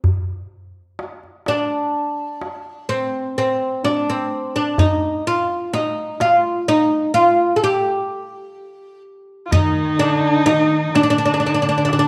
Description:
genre	Turkish makam ensemble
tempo	127 BPM (eighths)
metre	10/8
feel	straight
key	unclear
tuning	A4 = 440 Hz
part	darbuka	percussion	0.0-12.1 s	none	-24 LUFS	equal	none
part	oud	melody	1.5-12.1 s	C4 to A4-30c	-20 LUFS	equal	none
part	dark studio cello section	second line	9.5-12.1 s	D3 to Eb3	-25 LUFS	equal	none
part	rich kamancheh	second line	9.5-12.1 s	D4 to F4	-24 LUFS	equal	none
room	wet echo chamber reverb, RT60 1.3 s, studio reverb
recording	none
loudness	-18 LUFS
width	mono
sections	0.0-9.5 A section; 9.5-12.1 B section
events	stop 7.2-9.5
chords	none

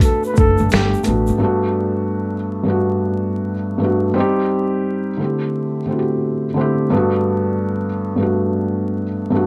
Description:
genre	lo-fi hip hop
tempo	87 BPM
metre	4/4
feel	swing 64% on 16ths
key	G major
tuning	A4 = 440 Hz
part	breathy flugelhorn	melody	0.0-1.0 s	G4 to B4	-25 LUFS	equal	low-pass filter, tape echo, plate reverb
part	felt-muted upright piano	accompaniment	0.0-9.5 s	G2 to A4	-20 LUFS	equal	low-pass filter
part	boom bap sampler-style drum kit	drums	0.0-1.3 s	hi-hat, kick drum, shaker, snare drum	-18 LUFS	equal	none
part	tube shaker	percussion	0.0-1.4 s	none	-44 LUFS	equal	none
part	upright bass	bass	0.4-1.4 s	F#1 to A1	-22 LUFS	equal	none
room	moderate studio ambience, RT60 0.5 s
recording	vinyl crackle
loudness	-19 LUFS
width	mono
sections	0.0-1.4 A section; 1.4-9.5 B section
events	none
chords	0.0 Gmaj9; 4.2 Cm; 5.2 D9sus4; 6.9 Gmaj9

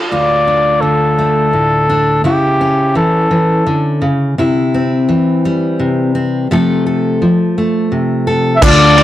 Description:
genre	indie folk with a building arrangement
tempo	56 BPM (dotted quarters)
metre	6/8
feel	straight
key	D minor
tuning	A4 = 440 Hz
part	picked twelve-string acoustic guitar	accompaniment	0.0-0.1, 8.6-9.0 s	D3 to A4	-15 LUFS	left 5 dB	none
part	bluegrass banjo	arpeggios	0.0-0.1, 8.6-9.0 s	D4 to A4	-20 LUFS	right 6 dB	none
part	clear trumpet	melody	0.1-4.0, 8.6-9.0 s	G4 to E5	-12 LUFS	left 1 dB	none
part	fingerpicked steel-string acoustic guitar	accompaniment	0.1-8.6 s	D2 to A4	-13 LUFS	equal	none
part	warm French horn	second line	8.6-9.0 s	D4	-16 LUFS	right 3 dB	none
part	pedal harmonium	sustained chords	8.6-9.0 s	F4 to A5	-20 LUFS	right 1 dB	none
part	fingered electric bass	bass	8.6-9.0 s	D2	-12 LUFS	equal	none
part	cloth-damped thuddy drum kit	drums	8.6-9.0 s	crash cymbal, kick drum, ride cymbal	-16 LUFS	equal	none
part	group handclap	percussion	8.6-8.8 s	none	-22 LUFS	right 5 dB	none
part	tambourine	percussion	8.6-8.8 s	none	-29 LUFS	left 11 dB	none
room	light reverb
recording	blown-out, overdriven recording, overdrive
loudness	-11 LUFS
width	side -13 dB against mid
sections	0.1-8.6 A section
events	none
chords	0.1 Dm; 2.2 A/C#; 4.4 C; 6.5 F/C

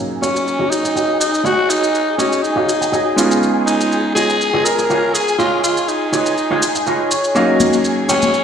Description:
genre	nu-disco, nu disco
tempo	122 BPM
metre	4/4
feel	straight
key	Eb minor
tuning	A4 = 440 Hz
part	bright electric grand piano	accompaniment	0.0-8.4 s	Gb3 to F5	-20 LUFS	equal	low-pass filter, ping-pong delay
part	warm studio violin section	sustained chords	0.0-8.4 s	Ab4 to Ab5	-24 LUFS	equal	low-pass filter
part	growling tenor saxophone	melody	0.2-8.4 s	Db4 to Bb4	-18 LUFS	left 1 dB	ping-pong delay
part	electric guitar with an envelope filter	riff	0.2-8.3 s	F4 to Ab5	-19 LUFS	right 2 dB	lush chorus, low-pass filter, ping-pong delay
part	shaker	drums	0.2-8.4 s	none	-23 LUFS	right 1 dB	studio reverb
part	congas	percussion	7.6-8.3 s	none	-21 LUFS	left 6 dB	none
room	moderate lush hall reverb, RT60 1.8 s, small room ambience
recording	played on a big sound system in a bare room, large studio reverb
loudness	-14 LUFS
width	side -7 dB against mid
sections	0.0-8.4 A section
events	filter sweep on clean electric guitar 0.0-8.4; filter sweep on electric grand piano 0.0-8.4; filter sweep on violin section 0.0-8.4; clean electric guitar fill 6.4-7.4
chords	0.0 Ebm7; 3.2 Db9; 7.4 Ebm7

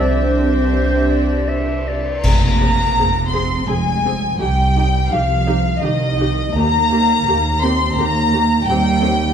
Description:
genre	cinematic, emotional film score for orchestra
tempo	84 BPM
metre	3/4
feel	uneven beats, rubato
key	unclear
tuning	A4 = 436 Hz
part	warm studio violin section	melody	0.0-9.3 s	Eb5 to C6	-21 LUFS	left 3 dB	none
part	clear clarinet	second line	0.0-2.2 s	C5 to E5	-26 LUFS	left 3 dB	none
part	silver concert flute	second line	0.0-1.8 s	C5	-31 LUFS	left 4 dB	none
part	warm chamber violin section	second line	0.0-9.3 s	C5 to C6	-23 LUFS	left 2 dB	none
part	warm symphonic viola section	accompaniment	0.0-9.1 s	Bb3 to Ab4	-24 LUFS	equal	none
part	dark studio double bass section	bass	0.0-9.3 s	F1 to Eb2	-19 LUFS	right 2 dB	none
part	warm studio cello section	bass	0.0-9.3 s	Eb3 to C4	-23 LUFS	right 3 dB	none
part	clash cymbals and concert bass drum	percussion	2.2-3.6 s	none	-21 LUFS	equal	none
room	moderate scoring stage reverb, RT60 1.8 s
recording	dark, warm production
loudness	-14 LUFS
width	side -8 dB against mid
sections	0.0-2.2 A section; 2.2-9.3 B section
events	band accent 2.2-3.0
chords	0.0 Cadd9; 2.2 Fm; 4.4 Cm; 6.5 Eb; 8.7 Cm/Eb

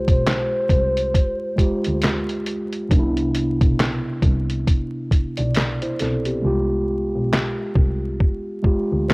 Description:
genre	lo-fi hip hop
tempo	68 BPM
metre	4/4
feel	swing 59% on 16ths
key	unclear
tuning	A4 = 440 Hz
part	hollow clarinet-like synth lead	melody	0.0-2.3 s	C5	-23 LUFS	equal	chorus, low-pass filter, cassette tape
part	mellow tine electric piano	accompaniment	0.0-9.1 s	C3 to D5	-24 LUFS	equal	medium stereo tremolo, cassette tape, low-pass filter
part	dark double bass	bass	0.0-9.1 s	B1 to D2	-25 LUFS	equal	none
part	lo-fi sampler-style drum kit	drums	0.1-9.1 s	handclaps, hi-hat, kick drum, snare drum	-19 LUFS	equal	cassette tape
room	light reverb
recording	home recording on cassette, vinyl crackle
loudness	-18 LUFS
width	side -28 dB against mid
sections	0.0-9.1 A section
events	hi-hats muted 6.4-9.1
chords	0.0 Fmadd9; 2.9 Cmaj9; 6.4 Fmadd9

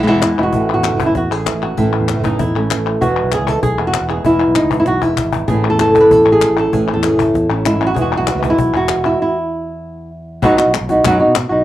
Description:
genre	flamenco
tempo	194 BPM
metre	4/4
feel	straight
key	E major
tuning	A4 = 440 Hz
part	flamenco guitar	melody	0.0-11.6 s	E2 to B4	-14 LUFS	equal	cassette tape, plate reverb
part	fingered electric bass	bass	0.0-11.6 s	E1 to B2	-23 LUFS	right 1 dB	none
part	palmas hand claps	percussion	0.1-11.5 s	none	-23 LUFS	left 9 dB	none
part	cajon	percussion	0.2-11.5 s	none	-24 LUFS	left 4 dB	none
part	flamenco guitar	stabs	0.5-9.2 s	B2 to E4	-23 LUFS	right 5 dB	cassette tape, plate reverb
room	wet small room reverb, RT60 0.5 s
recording	home recording on cassette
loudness	-12 LUFS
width	side -13 dB against mid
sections	0.5-10.4 A section; 10.4-11.6 B section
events	drum fill 4.9-5.5; stop 9.2-10.4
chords	0.0 E; 0.5 A; 3.0 E; 5.5 A; 8.0 E; 10.4 B

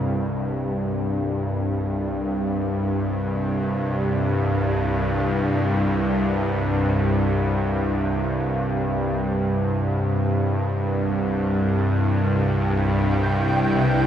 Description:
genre	dark ambient drone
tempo	free time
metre	none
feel	none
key	C major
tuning	A4 = 440 Hz
part	dark detuned synth bell	arpeggios	0.0-12.7 s	C4 to G4	-41 LUFS	equal	none
part	bowed-like drone	drone	0.0-14.1 s	C2 to G2	-20 LUFS	equal	built-in reverb
part	granular cloud pad	sustained chords	13.5-14.1 s	C3 to B4	-25 LUFS	left 2 dB	built-in reverb
part	flickering grainy texture	texture	13.0-14.1 s	G5	-28 LUFS	equal	built-in reverb, shimmer reverb
room	wet cathedral reverb, RT60 7.4 s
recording	in a vast, echoing space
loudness	-20 LUFS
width	side -9 dB against mid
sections	0.0-14.1 A section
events	none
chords	0.0 C5; 12.7 Em/C

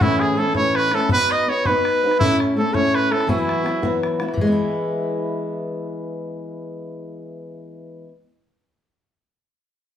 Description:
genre	celtic folk, Celtic jig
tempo	110 BPM (dotted quarters)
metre	6/8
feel	straight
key	E major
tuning	A4 = 440 Hz
part	clear trumpet	melody	0.0-4.0 s	E4 to D#5	-20 LUFS	right 2 dB	none
part	fingerpicked steel-string acoustic guitar	accompaniment	0.0-8.1 s	A2 to B4	-22 LUFS	left 1 dB	none
part	bodhran	percussion	0.0-4.6 s	none	-26 LUFS	left 1 dB	none
room	wet large studio reverb, RT60 0.8 s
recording	band playing live in one room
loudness	-18 LUFS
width	side -9 dB against mid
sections	0.0-4.4 A section; 4.4-6.6 B section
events	none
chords	0.0 A; 1.1 B; 2.2 A; 3.3 Esus2; 4.4 E

